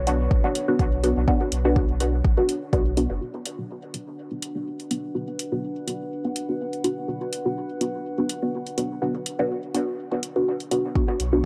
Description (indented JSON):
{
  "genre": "dub techno",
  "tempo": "124 BPM",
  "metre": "4/4",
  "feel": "swing 54% on 16ths",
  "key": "B minor",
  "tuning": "A4 = 440 Hz",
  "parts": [
    { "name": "dark analog pad", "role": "sustained chords", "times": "0.0-11.5 s", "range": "D4 to F#5", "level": "-36 LUFS", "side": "equal", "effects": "chorus, phaser, sidechain pumping" },
    { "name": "warm sub bass", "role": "bass", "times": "0.0-3.2, 11.2-11.5 s", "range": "F#1 to B1", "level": "-27 LUFS", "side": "equal", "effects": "tube saturation, sidechain pumping" },
    { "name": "filtered dub chord stab", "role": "stabs", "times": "0.1-11.5 s", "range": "B3 to F#4", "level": "-28 LUFS", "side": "equal", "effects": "phaser, sidechain pumping, dub echo" },
    { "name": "electronic hi-hat", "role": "drums", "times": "0.1-11.3 s", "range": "none", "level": "-34 LUFS", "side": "equal", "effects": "overdrive" },
    { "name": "electronic kick drum", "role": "drums", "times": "0.3-2.8, 11.0-11.1 s", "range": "none", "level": "-24 LUFS", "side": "equal", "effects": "overdrive" },
    { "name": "wind-like tuned noise texture", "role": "texture", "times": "11.2-11.5 s", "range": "C#5", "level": "-47 LUFS", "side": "equal", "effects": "built-in reverb, sidechain pumping" }
  ],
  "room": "digital ambience",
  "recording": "dry, gritty hardware recording",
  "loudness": "-25 LUFS",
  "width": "mono",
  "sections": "0.0-3.2 A section; 3.2-11.0 B section",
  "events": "filter sweep on synth stab 3.2-11.0",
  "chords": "0.0 Bm"
}